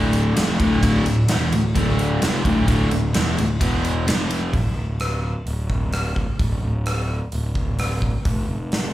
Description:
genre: classic rock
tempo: 129 BPM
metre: 4/4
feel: straight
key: D minor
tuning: A4 = 440 Hz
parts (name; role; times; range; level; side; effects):
- overdriven semi-hollow guitar; riff; 0.0-4.5 s; D2 to F3; -20 LUFS; equal; slapback echo
- fuzz picked electric bass; bass; 0.0-8.9 s; D1 to F1; -23 LUFS; equal; overdrive
- gated 80s drum kit; drums; 0.1-8.8 s; hi-hat, kick drum, ride cymbal, rim click, snare drum; -23 LUFS; equal; none
room: light reverb, studio ambience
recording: live gig heard through the venue's PA, club ambience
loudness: -18 LUFS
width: side -14 dB against mid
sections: 0.0-4.5 A section; 4.5-8.9 B section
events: none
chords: 0.0 Dm; 3.6 E5; 4.1 F5; 4.5 N.C.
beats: 0.37 | 0.83 1.29 1.76 2.22 | 2.68 3.15 3.61 4.07 | 4.54 5.00 5.47 5.93 | 6.40 6.86 7.33 7.79 | 8.26 8.72

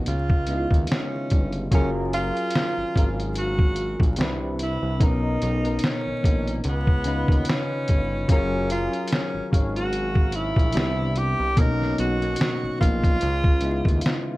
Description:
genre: lo-fi hip hop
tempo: 73 BPM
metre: 4/4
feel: swing 55% on 16ths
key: F# major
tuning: A4 = 437 Hz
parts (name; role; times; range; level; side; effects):
- soft electric-piano-like synth keys; accompaniment; 0.0-14.4 s; B2 to E#5; -28 LUFS; left 1 dB; chorus, cassette tape
- fat analog bass; bass; 0.0-14.0 s; F#1 to D#2; -27 LUFS; equal; none
- breathy tenor saxophone; melody; 0.1-14.4 s; B3 to A#4; -28 LUFS; right 1 dB; analog delay
- lo-fi sampler-style drum kit; drums; 0.1-14.3 s; hi-hat, kick drum, snare drum; -22 LUFS; equal; none
room: light reverb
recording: vinyl crackle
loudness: -20 LUFS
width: side -18 dB against mid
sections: 0.0-1.7 A section; 1.7-14.4 B section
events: none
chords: 0.1 C#7; 1.7 F#maj7; 4.2 Cmaj7; 5.0 Bmaj7; 6.6 C#7; 8.3 F#maj7; 10.8 Cmaj7; 11.6 Bmaj7; 13.2 C#7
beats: 0.07 0.89 | 1.71 2.53 3.36 4.18 | 5.00 5.82 6.64 7.47 | 8.29 9.11 9.93 10.75 | 11.58 12.40 13.22 14.04

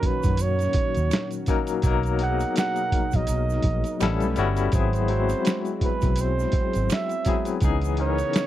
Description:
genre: R&B, neo-soul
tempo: 83 BPM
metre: 4/4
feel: swing 58% on 16ths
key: unclear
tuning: A4 = 442 Hz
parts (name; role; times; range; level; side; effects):
- breathy flugelhorn; melody; 0.0-8.5 s; B4 to F#5; -29 LUFS; right 5 dB; none
- barky tine electric piano; accompaniment; 0.0-8.5 s; A#2 to C#5; -27 LUFS; left 8 dB; overdrive, medium tremolo
- warm analog pad; sustained chords; 0.0-8.5 s; B2 to A#4; -34 LUFS; right 4 dB; chorus
- vintage muted fingered electric bass; bass; 0.0-8.2 s; G1 to F#2; -25 LUFS; right 1 dB; none
- boom bap sampler-style drum kit; drums; 0.0-8.5 s; hi-hat, kick drum, snare drum; -25 LUFS; right 1 dB; none
- tube shaker and finger snaps; percussion; 0.2-8.5 s; none; -40 LUFS; right 20 dB; none
room: little or no reverb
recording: dry, close 1970s-style studio recording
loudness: -21 LUFS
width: side -13 dB against mid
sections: 0.0-8.5 A section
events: none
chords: 0.0 D#m7; 1.8 Bmaj7; 4.0 A9; 4.7 G#7alt; 7.6 C#m9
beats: 0.39 1.11 | 1.83 2.56 3.28 4.00 | 4.72 5.45 6.17 6.89 | 7.62 8.34

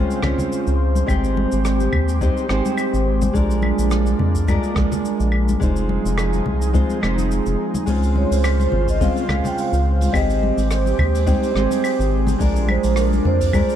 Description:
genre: sunset chillout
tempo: 106 BPM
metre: 4/4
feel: swing 55% on 16ths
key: Ab major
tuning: A4 = 440 Hz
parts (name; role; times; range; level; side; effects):
- nylon-string guitar; accompaniment; 0.0-13.8 s; Ab3 to C5; -23 LUFS; moving between left 5 dB and right 4 dB; auto-pan, vintage 12-bit sampler grit, digital delay
- airy breathy pad; sustained chords; 0.0-13.8 s; Db3 to C5; -26 LUFS; equal; chorus
- round analog bass; bass; 0.0-13.6 s; F1 to F2; -20 LUFS; equal; tube saturation
- soft brush drum kit; drums; 0.1-13.8 s; claves, hi-hat, rim click, shaker; -30 LUFS; equal; none
- electronic kick drum; drums; 0.2-13.7 s; none; -22 LUFS; equal; none
- congas; percussion; 0.2-13.7 s; none; -29 LUFS; left 2 dB; none
- vibraphone with soft mallets; melody; 8.2-13.8 s; Bb4 to G5; -23 LUFS; right 4 dB; digital delay
room: light reverb, small room reverb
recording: dark, warm production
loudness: -16 LUFS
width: side -10 dB against mid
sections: 0.0-13.8 A section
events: none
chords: 0.0 Dbmaj7; 1.1 Abmaj7; 3.3 Bb7; 5.6 Fm7; 7.9 Dbmaj7; 10.1 Abmaj7; 12.4 Bb7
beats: 0.52 | 1.08 1.65 2.22 2.78 | 3.35 3.92 4.48 5.05 | 5.61 6.18 6.75 7.31 | 7.88 8.44 9.01 9.57 | 10.14 10.71 11.27 11.84 | 12.41 12.97 13.54

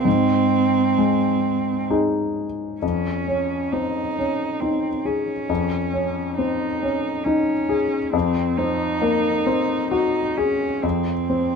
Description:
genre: neoclassical piano and strings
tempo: 67 BPM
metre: 3/4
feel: uneven beats, rubato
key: unclear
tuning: A4 = 439 Hz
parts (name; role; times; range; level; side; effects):
- dark cello; second line; 0.0-11.6 s; C4 to Eb4; -23 LUFS; right 6 dB; none
- warm grand piano; accompaniment; 0.0-11.6 s; F2 to Ab4; -21 LUFS; left 4 dB; none
room: moderate studio ambience, RT60 0.5 s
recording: none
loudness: -19 LUFS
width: side -5 dB against mid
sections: 0.0-2.8 A section; 2.8-11.6 B section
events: none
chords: 0.1 Ab; 2.8 Dbadd9/F; 8.1 Ab7/F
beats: | 0.05 0.98 1.90 | 2.82 3.73 4.61 | 5.50 6.38 7.26 | 8.14 9.02 9.92 | 10.83

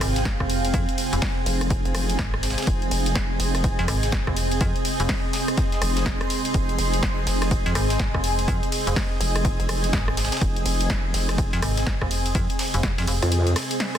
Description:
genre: bass house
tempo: 124 BPM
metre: 4/4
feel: swing 62% on 16ths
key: F minor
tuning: A4 = 440 Hz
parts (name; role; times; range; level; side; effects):
- sweeping resonant pad; sustained chords; 0.0-14.0 s; C4 to Ab5; -33 LUFS; right 1 dB; chorus, sidechain pumping
- metallic FM bass; bass; 0.0-13.2 s; F1 to F2; -25 LUFS; equal; overdrive, sidechain pumping
- breakbeat sampler-style drum kit; drums; 0.0-13.9 s; hi-hat, snare drum; -37 LUFS; right 2 dB; none
- house drum kit; drums; 0.0-14.0 s; hi-hat, ride cymbal, rim click, snare drum; -28 LUFS; equal; none
- granular cloud pad; texture; 0.0-14.0 s; C4 to C6; -28 LUFS; right 1 dB; built-in reverb, sidechain pumping
- electronic kick drum; drums; 0.3-13.0 s; none; -26 LUFS; equal; none
- vowel-sweep wobble bass; bass; 1.5-13.5 s; F1 to F2; -25 LUFS; equal; chorus, overdrive, sidechain pumping
room: light reverb, digital ambience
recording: dense, heavily limited modern master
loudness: -21 LUFS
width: side -10 dB against mid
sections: 0.0-14.0 A section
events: kick drops out 13.3-14.0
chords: 0.0 Fm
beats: 0.25 | 0.74 1.22 1.70 2.19 | 2.67 3.16 3.64 4.12 | 4.61 5.09 5.58 6.06 | 6.54 7.03 7.51 8.00 | 8.48 8.96 9.45 9.93 | 10.41 10.90 11.38 11.87 | 12.35 12.83 13.32 13.80

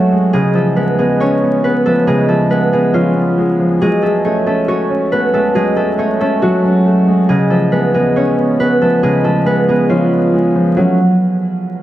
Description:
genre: hip hop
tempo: 138 BPM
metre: 4/4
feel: half-time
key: F# harmonic minor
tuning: A4 = 437 Hz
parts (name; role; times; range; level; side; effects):
- concert harp; melody; 0.0-11.1 s; E#3 to C#5; -13 LUFS; right 1 dB; none
- dark grand piano; accompaniment; 0.0-11.0 s; C#3 to F#4; -15 LUFS; equal; none
room: light reverb, small room ambience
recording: vinyl crackle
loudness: -11 LUFS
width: side -13 dB against mid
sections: 0.0-10.8 A section; 10.8-11.8 B section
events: none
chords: 0.3 C#7; 3.8 F#madd9; 7.3 C#7; 10.8 F#madd9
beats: | 0.33 0.77 1.20 1.64 | 2.07 2.51 2.94 3.38 | 3.81 4.25 4.68 5.12 | 5.55 5.99 6.42 6.86 | 7.29 7.72 8.16 8.60 | 9.03 9.46 9.90 10.33 | 10.77

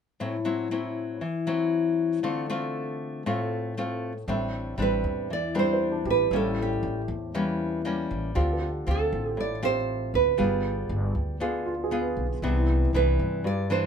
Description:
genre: bossa nova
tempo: 118 BPM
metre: 4/4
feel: straight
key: A minor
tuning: A4 = 440 Hz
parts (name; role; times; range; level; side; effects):
- nylon-string guitar; accompaniment; 0.2-13.9 s; G2 to Ab4; -28 LUFS; left 4 dB; none
- warm concert grand piano; accompaniment; 4.3-13.9 s; D4 to E5; -35 LUFS; right 3 dB; none
- upright bass; bass; 4.3-13.9 s; G1 to G2; -29 LUFS; equal; none
- nylon-string guitar; melody; 4.8-13.9 s; G4 to D5; -27 LUFS; right 8 dB; none
room: light reverb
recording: minimal, uncompressed stereo recording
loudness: -24 LUFS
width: side -7 dB against mid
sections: 0.2-4.3 A section; 4.3-13.9 B section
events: none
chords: 0.2 Am6; 2.2 Dm7; 4.3 Am11; 6.3 A7b9; 8.4 Dm7; 10.4 G7b9; 12.4 Cmaj9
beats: | 0.21 0.72 1.23 1.74 | 2.25 2.76 3.27 3.77 | 4.28 4.79 5.30 5.81 | 6.32 6.83 7.34 7.85 | 8.36 8.86 9.37 9.88 | 10.39 10.90 11.41 11.91 | 12.42 12.93 13.44

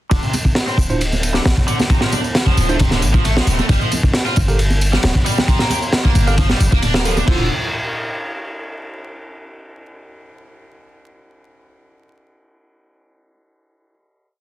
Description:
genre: breakbeat, breaks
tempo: 134 BPM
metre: 4/4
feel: straight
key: D minor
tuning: A4 = 441 Hz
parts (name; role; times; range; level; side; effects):
- raw garage guitar; riff; 0.1-7.5 s; C3 to G4; -23 LUFS; equal; overdrive, vintage 12-bit sampler grit, low-pass filter, digital delay
- warm 808-style bass; bass; 0.1-7.5 s; D1 to A1; -18 LUFS; equal; none
- crunchy breakbeat drum kit; drums; 0.1-7.4 s; crash cymbal, kick drum, ride cymbal, snare drum; -17 LUFS; equal; none
- tambourine; drums; 0.1-7.3 s; none; -29 LUFS; left 1 dB; overdrive
- congas; percussion; 0.3-7.3 s; none; -27 LUFS; right 2 dB; none
- bell-like tine electric piano; stabs; 0.9-7.4 s; D4 to F5; -24 LUFS; right 3 dB; phaser, digital delay
- vibraphone with soft mallets; melody; 5.4-5.9 s; G5 to Bb5; -26 LUFS; left 1 dB; old record sound, vintage 12-bit sampler grit, digital delay
room: light reverb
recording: dense, heavily limited modern master, vinyl crackle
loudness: -14 LUFS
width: side -15 dB against mid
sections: 0.1-7.3 groove; 7.3-9.1 final chord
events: none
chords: 0.1 Dm7; 3.7 Gm7; 7.3 N.C.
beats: | 0.11 0.56 1.01 1.46 | 1.90 2.35 2.80 3.25 | 3.69 4.14 4.59 5.04 | 5.49 5.93 6.38 6.83 | 7.28

